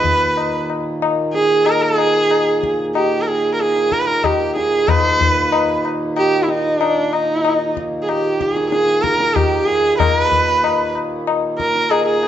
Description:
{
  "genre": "indian classical, Hindustani",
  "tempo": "94 BPM",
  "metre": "4/4",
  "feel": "straight",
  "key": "Eb major",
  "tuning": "A4 = 439 Hz",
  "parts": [
    { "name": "rich sarangi", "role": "melody", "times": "0.0-12.3 s", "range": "D4 to Cb5+20c", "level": "-16 LUFS", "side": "right 2 dB", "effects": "none" },
    { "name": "pedal harmonium", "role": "drone", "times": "0.0-12.3 s", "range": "Eb2 to Bb2", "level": "-24 LUFS", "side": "right 2 dB", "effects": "none" },
    { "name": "tabla", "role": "percussion", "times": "0.0-12.3 s", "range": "none", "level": "-20 LUFS", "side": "left 6 dB", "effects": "none" }
  ],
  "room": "moderate recital hall reverb, RT60 1.5 s",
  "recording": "nothing above 7.7 kHz",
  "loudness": "-14 LUFS",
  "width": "side -10 dB against mid",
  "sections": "0.0-4.9 A section; 4.9-12.3 B section",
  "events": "none",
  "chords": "none",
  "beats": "0.37 1.01 1.66 | 2.31 2.95 3.60 4.24 | 4.88 5.53 6.17 6.81 | 7.45 8.09 8.73 9.36 | 10.00 10.64 11.27 11.91"
}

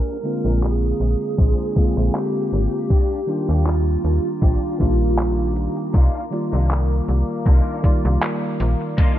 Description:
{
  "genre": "vaporwave",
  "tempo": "79 BPM",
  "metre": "4/4",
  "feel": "swing 53% on 16ths",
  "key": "C minor",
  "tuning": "A4 = 438 Hz",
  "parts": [
    { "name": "lead guitar through a small cranked amp", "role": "melody", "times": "0.0-5.5 s", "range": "F4 to Bb4", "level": "-26 LUFS", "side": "right 2 dB", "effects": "overdrive, tape echo" },
    { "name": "warbly tape-like pad", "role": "sustained chords", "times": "0.0-9.2 s", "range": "Ab3 to D6", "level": "-34 LUFS", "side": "equal", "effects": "chorus, built-in reverb" },
    { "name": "semi-hollow electric guitar", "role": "riff", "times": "0.0-9.2 s", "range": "Bb3 to C5", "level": "-34 LUFS", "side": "left 2 dB", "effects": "ensemble chorus, low-pass filter, tape echo" },
    { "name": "tine electric piano", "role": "accompaniment", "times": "0.2-9.2 s", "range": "D3 to D5", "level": "-24 LUFS", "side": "equal", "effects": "analog chorus, tape echo" },
    { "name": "detuned 8-bit digital drum machine", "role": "drums", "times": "0.2-9.1 s", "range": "handclaps, hi-hat", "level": "-29 LUFS", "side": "equal", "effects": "low-pass filter on hats, low-pass filter on snare, low-pass filter on room" },
    { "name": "slap-like FM bass", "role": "bass", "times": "0.4-8.8 s", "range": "Ab1 to Eb2", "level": "-19 LUFS", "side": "equal", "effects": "none" },
    { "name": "electronic kick drum", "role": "drums", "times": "1.4-9.1 s", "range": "none", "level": "-17 LUFS", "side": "equal", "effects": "none" }
  ],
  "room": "light reverb",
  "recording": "low-pass filter",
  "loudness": "-17 LUFS",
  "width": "side -12 dB against mid",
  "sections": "0.0-9.2 A section",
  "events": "filter sweep on clean electric guitar 0.0-9.2; filter sweep 0.0-9.2",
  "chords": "0.0 Bb7; 2.9 Ebmaj9; 5.9 Cm11",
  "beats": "0.63 1.39 2.15 | 2.91 3.67 4.42 5.18 | 5.94 6.70 7.46 8.22 | 8.98"
}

